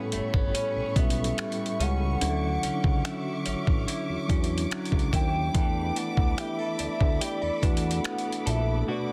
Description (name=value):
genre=contemporary R&B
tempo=72 BPM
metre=4/4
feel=straight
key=unclear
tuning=A4 = 440 Hz
part: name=mellow tine electric piano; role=accompaniment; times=0.0-9.1 s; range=F#3 to B4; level=-35 LUFS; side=equal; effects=none
part: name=dark studio string section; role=sustained chords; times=0.0-9.1 s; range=F#3 to D6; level=-40 LUFS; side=equal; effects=none
part: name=direct-recorded clean electric guitar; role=arpeggios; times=0.0-9.1 s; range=A2 to A4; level=-38 LUFS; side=equal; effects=harmonic tremolo
part: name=fat analog bass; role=bass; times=0.1-8.8 s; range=G1 to E2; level=-31 LUFS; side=equal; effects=none
part: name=dusty soul sampler-style drum kit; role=drums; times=0.1-8.7 s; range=finger snaps, hi-hat, kick drum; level=-29 LUFS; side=equal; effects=soft clipping on snare
part: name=hollow clarinet-like synth lead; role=melody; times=0.2-9.1 s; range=C#5 to G5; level=-35 LUFS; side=equal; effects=chorus, delay
room=little or no reverb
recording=dense, heavily limited modern master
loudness=-27 LUFS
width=mono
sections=0.0-9.1 A section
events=break 8.9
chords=0.0 A9; 2.2 Dmaj9; 5.5 E7sus4